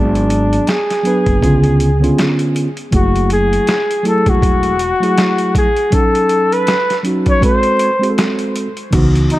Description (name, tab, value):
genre	hip hop, jazz-hop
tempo	80 BPM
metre	4/4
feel	swing 58% on 16ths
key	unclear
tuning	A4 = 440 Hz
part	breathy flugelhorn	melody	0.0-9.4 s	D4 to C#5	-16 LUFS	left 1 dB	tape echo
part	mellow tine electric piano	accompaniment	0.0-9.4 s	D3 to B4	-17 LUFS	right 1 dB	none
part	upright bass	bass	0.0-9.2 s	E1 to C#2	-16 LUFS	equal	none
part	boom bap sampler-style drum kit	drums	0.2-9.4 s	crash cymbal, hi-hat, kick drum, snare drum	-17 LUFS	equal	none
room	light reverb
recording	dark, warm production, vinyl crackle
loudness	-12 LUFS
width	side -16 dB against mid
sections	0.0-8.9 A section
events	none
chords	0.0 G#m7b5; 1.4 C#7b9; 2.9 F#m9; 5.9 D#m7b5; 7.4 G#7b9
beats	0.68 1.43 2.18 | 2.93 3.68 4.43 5.18 | 5.93 6.68 7.43 8.18 | 8.93